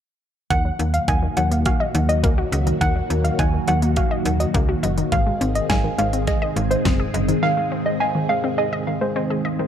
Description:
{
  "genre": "synth-pop",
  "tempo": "104 BPM",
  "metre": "4/4",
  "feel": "straight",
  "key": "unclear",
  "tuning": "A4 = 440 Hz",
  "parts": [
    { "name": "soft round pluck", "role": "second line", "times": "0.5-9.1 s", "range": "C5 to Ab5", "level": "-24 LUFS", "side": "right 2 dB", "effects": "chorus, tape echo" },
    { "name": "string machine, cellos", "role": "sustained chords", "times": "0.5-9.7 s", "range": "Eb3 to Ab4", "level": "-25 LUFS", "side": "equal", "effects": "phaser, ensemble chorus" },
    { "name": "wide unison pluck", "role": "arpeggios", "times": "0.5-9.7 s", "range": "Eb3 to Eb5", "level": "-26 LUFS", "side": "left 3 dB", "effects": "tape echo" },
    { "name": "slap-like FM bass", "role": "bass", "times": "0.5-7.3 s", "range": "Gb1 to Eb2", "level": "-22 LUFS", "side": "equal", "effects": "none" },
    { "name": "pop drum kit", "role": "drums", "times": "0.5-7.4 s", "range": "hi-hat, kick drum, snare drum", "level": "-23 LUFS", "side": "equal", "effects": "none" }
  ],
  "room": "light reverb",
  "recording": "echo-heavy mix",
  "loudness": "-18 LUFS",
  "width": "side -9 dB against mid",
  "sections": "0.5-9.7 A section",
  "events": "none",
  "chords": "0.5 Ebm; 5.1 Ab"
}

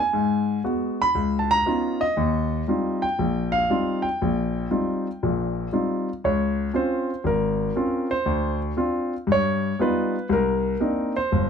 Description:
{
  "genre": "solo jazz",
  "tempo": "118 BPM",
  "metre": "4/4",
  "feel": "swing 67% on 8ths",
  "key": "unclear",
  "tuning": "A4 = 441 Hz",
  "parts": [
    { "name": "warm baby grand piano", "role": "solo", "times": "0.0-11.5 s", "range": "G1 to Cb6", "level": "-21 LUFS", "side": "equal", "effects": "none" }
  ],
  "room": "light reverb",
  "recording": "close, detailed microphones",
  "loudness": "-21 LUFS",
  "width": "side -7 dB against mid",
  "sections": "0.0-6.2 A section; 6.2-11.5 B section",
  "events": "grand piano solo 6.2-11.5",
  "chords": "0.1 Abm7; 1.2 Db9; 2.2 Eb69; 6.2 Dbmaj7; 8.3 Dm7; 9.3 G7b13; 10.3 Cm9"
}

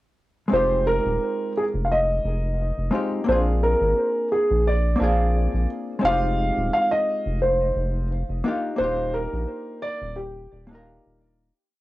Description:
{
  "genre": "sunset chillout",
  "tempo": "87 BPM",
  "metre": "4/4",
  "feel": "swing 54% on 16ths",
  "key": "F dorian",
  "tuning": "A4 = 440 Hz",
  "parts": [
    { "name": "dark concert grand piano", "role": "melody", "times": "0.5-11.2 s", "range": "G4 to F5", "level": "-23 LUFS", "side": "right 1 dB", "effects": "cassette tape, analog delay" },
    { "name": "hollow-body jazz guitar", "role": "accompaniment", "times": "0.5-11.5 s", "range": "Ab3 to Bb4", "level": "-27 LUFS", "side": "left 1 dB", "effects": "auto-pan, cassette tape, tape echo" },
    { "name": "round analog bass", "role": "bass", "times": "0.5-11.5 s", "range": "Eb1 to Bb1", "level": "-24 LUFS", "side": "equal", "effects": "tube saturation" }
  ],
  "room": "moderate booth ambience, RT60 0.2 s",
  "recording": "home recording on cassette",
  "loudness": "-20 LUFS",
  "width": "side -17 dB against mid",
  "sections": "0.5-11.6 groove",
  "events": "fade-out 7.9-11.6",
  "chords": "0.5 Fm9; 3.3 Bb7; 6.0 Fm9; 8.5 Ebmaj7"
}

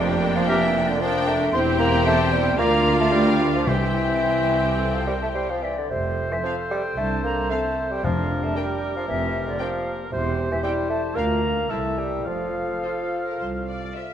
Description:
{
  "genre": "quick classical-period movement for symphony orchestra",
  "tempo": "105-118 BPM",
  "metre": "4/4",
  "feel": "rubato",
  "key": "F major",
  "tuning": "A4 = 439 Hz",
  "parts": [
    { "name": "warm studio violin section", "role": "melody", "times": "0.0-14.0 s", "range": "C5 to G5", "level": "-32 LUFS", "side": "left 3 dB", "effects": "none" },
    { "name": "silver concert flute", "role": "second line", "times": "0.0-14.0 s", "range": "C5 to C6", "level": "-31 LUFS", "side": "left 2 dB", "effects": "none" },
    { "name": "warm studio violin section", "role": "second line", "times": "0.0-14.1 s", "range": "G4 to E5", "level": "-33 LUFS", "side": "left 3 dB", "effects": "none" },
    { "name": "mellow bassoon", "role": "accompaniment", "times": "0.0-14.0 s", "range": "C3 to C4", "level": "-25 LUFS", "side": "right 1 dB", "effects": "none" },
    { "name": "rich symphonic viola section", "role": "accompaniment", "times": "0.0-14.0 s", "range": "C4 to F4", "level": "-30 LUFS", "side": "right 1 dB", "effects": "none" },
    { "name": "mellow French horn section", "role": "sustained chords", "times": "0.0-14.1 s", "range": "Bb3 to G4", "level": "-29 LUFS", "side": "left 4 dB", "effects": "none" },
    { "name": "dark studio cello section", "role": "bass", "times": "0.0-13.9 s", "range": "C2 to F2", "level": "-29 LUFS", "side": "right 2 dB", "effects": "none" },
    { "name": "rich studio double bass section", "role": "bass", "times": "0.0-13.9 s", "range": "E1 to D2", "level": "-30 LUFS", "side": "right 3 dB", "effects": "none" },
    { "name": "timpani", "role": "percussion", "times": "0.0-0.2, 3.7-4.5, 8.0-8.8 s", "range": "F2 to C3", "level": "-29 LUFS", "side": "left 1 dB", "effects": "none" },
    { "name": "dark clarinet", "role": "second line", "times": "0.5-14.1 s", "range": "E4 to D5", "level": "-33 LUFS", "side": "left 2 dB", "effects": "none" },
    { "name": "warm oboe", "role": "second line", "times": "0.5-14.1 s", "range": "Bb4 to F5", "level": "-31 LUFS", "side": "equal", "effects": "none" }
  ],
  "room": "moderate scoring stage reverb, RT60 1.7 s",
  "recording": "none",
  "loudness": "-20 LUFS",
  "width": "side -9 dB against mid",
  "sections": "0.0-14.1 A section",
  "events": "none",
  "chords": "0.0 Gm7/F; 1.5 C/E; 2.6 Bb/D; 3.7 C; 5.9 F; 10.1 C/E; 11.2 Bb/D; 11.7 C7; 12.3 F"
}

